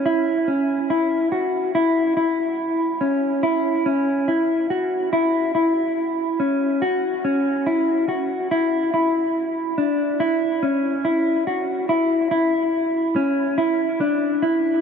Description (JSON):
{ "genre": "dream pop", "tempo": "71 BPM", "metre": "4/4", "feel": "straight", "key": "unclear", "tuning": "A4 = 440 Hz", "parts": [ { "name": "mellow electric guitar", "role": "solo", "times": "0.0-14.8 s", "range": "C#4 to F#4", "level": "-18 LUFS", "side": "equal", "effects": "wide subtle chorus, tape echo" } ], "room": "wet huge ambient reverb, RT60 7.4 s", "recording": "none", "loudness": "-18 LUFS", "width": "side -6 dB against mid", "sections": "0.0-10.2 A section; 10.2-14.8 B section", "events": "none", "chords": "none" }